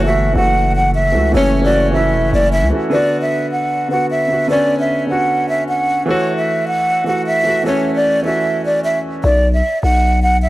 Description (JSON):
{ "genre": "hip hop, trap", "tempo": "152 BPM", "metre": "4/4", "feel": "half-time", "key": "B minor", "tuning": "A4 = 437 Hz", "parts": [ { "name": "breathy hollow jazz flute", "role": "melody", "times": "0.0-10.5 s", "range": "C#5 to F#5", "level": "-16 LUFS", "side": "right 1 dB", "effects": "analog delay" }, { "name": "dark baby grand piano", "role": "accompaniment", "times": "0.0-9.3 s", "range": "D3 to F#4", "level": "-18 LUFS", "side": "right 1 dB", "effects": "none" }, { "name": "growling 808-style bass", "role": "bass", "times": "0.0-2.7, 9.2-10.5 s", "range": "E1 to C#2", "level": "-16 LUFS", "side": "equal", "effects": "none" } ], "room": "light reverb, small room reverb", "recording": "dry, gritty hardware recording", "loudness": "-13 LUFS", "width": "side -16 dB against mid", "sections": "0.0-2.9 A section; 2.9-9.2 B section; 9.2-10.5 C section", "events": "none", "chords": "0.0 F#m7; 2.9 Bm; 6.1 F#m7; 9.2 B5" }